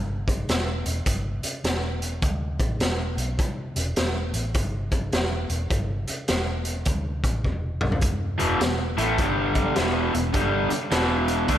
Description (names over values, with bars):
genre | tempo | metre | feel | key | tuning
blues rock power trio and southern rock | 104 BPM | 4/4 | swing 64% on 8ths | E minor | A4 = 440 Hz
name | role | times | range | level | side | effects
vintage muted fingered electric bass | bass | 0.0-11.6 s | E1 to D2 | -28 LUFS | equal | none
raw garage drum kit | drums | 0.3-11.6 s | hi-hat, kick drum, snare drum, toms | -26 LUFS | equal | none
raw garage guitar | riff | 8.4-11.6 s | E2 to D4 | -22 LUFS | equal | overdrive
room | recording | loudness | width
moderate scoring stage reverb, RT60 1.9 s, small room reverb | big arena sound | -22 LUFS | side -11 dB against mid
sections
0.0-11.6 A section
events
drum fill 7.4-8.0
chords
0.5 N.C.; 5.1 E5; 9.2 G5; 9.8 Em